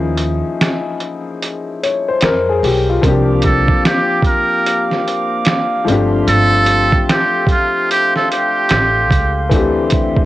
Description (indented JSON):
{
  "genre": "lo-fi hip hop",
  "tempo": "74 BPM",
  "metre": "4/4",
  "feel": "swing 63% on 16ths",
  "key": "unclear",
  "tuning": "A4 = 440 Hz",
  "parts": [
    { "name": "warm upright piano", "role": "accompaniment", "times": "0.0-10.3 s", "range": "E3 to Db5", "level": "-18 LUFS", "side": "left 4 dB", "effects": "cassette tape" },
    { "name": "upright bass", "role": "bass", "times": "0.0-10.1 s", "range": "G1 to F2", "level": "-18 LUFS", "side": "right 2 dB", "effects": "none" },
    { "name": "lo-fi sampler-style drum kit", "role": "drums", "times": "0.2-10.3 s", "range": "finger snaps, hi-hat, kick drum, snare drum", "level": "-16 LUFS", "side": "right 1 dB", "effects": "overdrive, cassette tape" },
    { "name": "glass harmonica", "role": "sustained chords", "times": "3.0-10.3 s", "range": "Bb3 to D6", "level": "-22 LUFS", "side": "right 1 dB", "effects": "cassette tape" },
    { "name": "trumpet with metal mute", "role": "melody", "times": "3.5-9.5 s", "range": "F4 to Bb4", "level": "-16 LUFS", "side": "right 2 dB", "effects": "cassette tape" }
  ],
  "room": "light reverb, studio reverb",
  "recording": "home recording on cassette",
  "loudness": "-12 LUFS",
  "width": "side -15 dB against mid",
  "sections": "0.0-10.3 A section",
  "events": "break 0.0-3.0",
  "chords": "0.0 Eb9sus4; 3.0 C9sus4; 5.9 G9sus4; 9.5 D9sus4",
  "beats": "0.60 1.41 2.22 | 3.03 3.84 4.65 5.46 | 6.27 7.08 7.89 8.70 | 9.52"
}